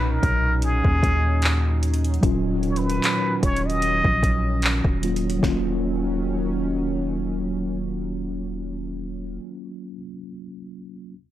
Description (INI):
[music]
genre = contemporary R&B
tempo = 75 BPM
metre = 4/4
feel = swing 54% on 16ths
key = Eb minor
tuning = A4 = 442 Hz
[part]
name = trumpet with plunger mute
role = melody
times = 0.0-4.6 s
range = Ab4 to Eb5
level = -25 LUFS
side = equal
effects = analog delay
[part]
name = mellow tine electric piano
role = accompaniment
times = 0.0-11.2 s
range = A#2 to F4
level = -27 LUFS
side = equal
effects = medium stereo tremolo
[part]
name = chorused pulse-width pad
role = sustained chords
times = 0.0-9.4 s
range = Eb3 to D#4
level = -31 LUFS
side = right 2 dB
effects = none
[part]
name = long sustained 808-style bass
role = bass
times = 0.0-9.4 s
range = Eb1 to D#2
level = -25 LUFS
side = equal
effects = transformer saturation
[part]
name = smooth R&B drum kit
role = drums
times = 0.2-5.6 s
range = handclaps, hi-hat, kick drum, snare drum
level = -24 LUFS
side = equal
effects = none
[sound]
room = little or no reverb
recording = dry, gritty hardware recording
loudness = -20 LUFS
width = side -13 dB against mid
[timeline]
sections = 0.0-5.4 A section; 5.4-8.6 B section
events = none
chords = 0.0 Bmaj9; 2.2 Ebm7